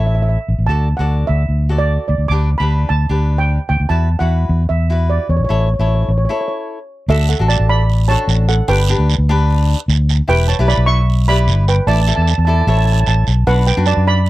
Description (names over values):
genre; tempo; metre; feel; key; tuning
calypso; 150 BPM; 4/4; straight; D major; A4 = 439 Hz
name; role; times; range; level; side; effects
steel pan; melody; 0.0-14.3 s; A4 to D6; -20 LUFS; right 3 dB; none
cavaquinho; accompaniment; 0.0-14.2 s; D4 to D5; -23 LUFS; left 4 dB; none
fingered electric bass; bass; 0.0-14.3 s; E1 to F#2; -13 LUFS; equal; none
guiro; percussion; 7.1-14.3 s; none; -25 LUFS; right 10 dB; none
room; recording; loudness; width
little or no reverb; dry, close 1970s-style studio recording; -12 LUFS; side -17 dB against mid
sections
0.0-7.1 A section; 7.1-14.3 B section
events
break 6.3-7.1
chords
0.0 A; 0.7 D; 2.3 G/D; 3.9 Esus2; 5.5 A; 7.1 D; 8.7 G; 10.3 Em7; 11.9 Asus4; 12.7 Aadd9; 13.5 Bm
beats
0.29 | 0.69 1.10 1.50 1.90 | 2.30 2.70 3.10 3.50 | 3.90 4.30 4.70 5.10 | 5.50 5.90 6.30 6.70 | 7.10 7.50 7.90 8.29 | 8.69 9.09 9.49 9.88 | 10.28 10.68 11.07 11.47 | 11.87 12.27 12.66 13.06 | 13.46 13.85 14.25